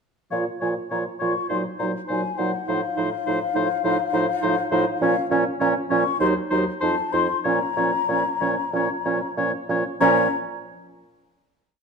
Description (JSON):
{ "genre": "quick classical-period movement for wind quintet", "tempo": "93-104 BPM", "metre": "4/4", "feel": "rubato", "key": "Bb minor", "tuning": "A4 = 440 Hz", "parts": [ { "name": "mellow hollow concert flute", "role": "melody", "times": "0.3-10.4 s", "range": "F5 to Db6", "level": "-26 LUFS", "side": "left 9 dB", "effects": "none" }, { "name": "warm oboe", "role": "second line", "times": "0.3-10.3 s", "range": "C5 to Db5", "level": "-27 LUFS", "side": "left 4 dB", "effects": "none" }, { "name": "mellow French horn", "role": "accompaniment", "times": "0.3-10.3 s", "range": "F3 to Gb3", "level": "-30 LUFS", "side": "equal", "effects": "none" }, { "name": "mellow clarinet", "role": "accompaniment", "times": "0.3-10.3 s", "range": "Db4 to F4", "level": "-27 LUFS", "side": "right 8 dB", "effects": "none" }, { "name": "warm bassoon", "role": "bass", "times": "0.3-10.3 s", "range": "Eb2 to Bb2", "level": "-27 LUFS", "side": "right 3 dB", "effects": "none" } ], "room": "wet recital hall reverb, RT60 1.5 s", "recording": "dark, warm production", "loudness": "-20 LUFS", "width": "side -5 dB against mid", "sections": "0.3-10.0 A section; 10.0-11.8 final chord", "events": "none", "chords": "0.3 Bbm; 1.5 Cm7b5/Bb; 2.7 F7/A; 5.0 Bbm; 6.2 Cdim/Eb; 6.8 F7; 7.4 Bbm", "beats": "| 0.31 0.91 1.50 2.09 | 2.68 3.27 3.85 4.43 | 5.02 5.61 6.21 6.82 | 7.45 8.09 8.74 9.37 | 10.01" }